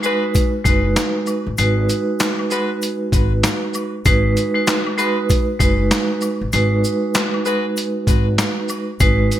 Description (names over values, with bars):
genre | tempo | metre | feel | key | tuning
hip hop, boom-bap hip-hop | 97 BPM | 4/4 | swing 61% on 16ths | G# minor | A4 = 440 Hz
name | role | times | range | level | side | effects
vibraphone with hard mallets | accompaniment | 0.0-9.4 s | G#3 to B4 | -19 LUFS | right 2 dB | cassette tape, high-pass filter, low-pass filter
edgy saxophone section | stabs | 0.0-7.7 s | G#3 to B4 | -26 LUFS | left 2 dB | high-pass filter, low-pass filter, ping-pong delay
boom bap sampler-style drum kit | drums | 0.0-9.4 s | handclaps, hi-hat, kick drum, shaker, snare drum | -19 LUFS | left 1 dB | gated reverb
tube shaker and woodblock | percussion | 0.0-9.4 s | none | -33 LUFS | left 5 dB | none
upright bass | bass | 0.7-9.3 s | F#1 to A1 | -19 LUFS | equal | none
room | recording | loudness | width
moderate plate reverb, RT60 1.5 s, small room ambience | bright 1980s-style digital production | -16 LUFS | side -12 dB against mid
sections
0.0-9.4 A section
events
none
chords
0.0 G#m7